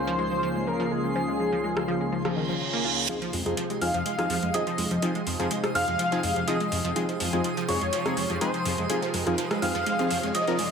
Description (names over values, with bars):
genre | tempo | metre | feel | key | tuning
progressive house | 124 BPM | 4/4 | straight | F minor | A4 = 440 Hz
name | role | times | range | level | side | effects
wide unison lead | melody | 0.0-10.7 s | Ab4 to F5 | -31 LUFS | equal | ensemble chorus, dub echo
airy breathy pad | sustained chords | 0.0-10.7 s | Db2 to Ab4 | -35 LUFS | equal | chorus, phaser
wide unison pluck | arpeggios | 0.0-10.7 s | Eb3 to F4 | -30 LUFS | right 1 dB | phaser, dub echo
chorused polysynth | stabs | 0.0-10.6 s | Db3 to Bb4 | -30 LUFS | left 1 dB | vintage 12-bit sampler grit
twinkling granular texture | texture | 0.0-10.7 s | C6 to C7 | -40 LUFS | right 2 dB | built-in reverb
deep house drum kit | drums | 1.8-10.7 s | hi-hat, rim click | -33 LUFS | equal | overdrive
reverse cymbal and riser | sound effects | 2.3-10.7 s | none | -34 LUFS | right 4 dB | none
dark detuned saw bass | bass | 3.3-10.7 s | F2 | -33 LUFS | equal | none
soft synth bell | second line | 3.8-10.7 s | C6 to F6 | -34 LUFS | left 1 dB | chorus, dub echo
room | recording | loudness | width
moderate lush hall reverb, RT60 1.6 s, digital ambience | high-pass filter | -24 LUFS | side -6 dB against mid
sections
0.0-3.1 A section; 3.1-10.7 B section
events
reverse cymbal 2.3-3.1; build-up 3.1-10.7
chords
0.0 Db6; 3.1 Fm7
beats
0.19 0.67 | 1.16 1.64 2.12 2.61 | 3.09 3.58 4.06 4.54 | 5.03 5.51 6.00 6.48 | 6.96 7.45 7.93 8.41 | 8.90 9.38 9.87 10.35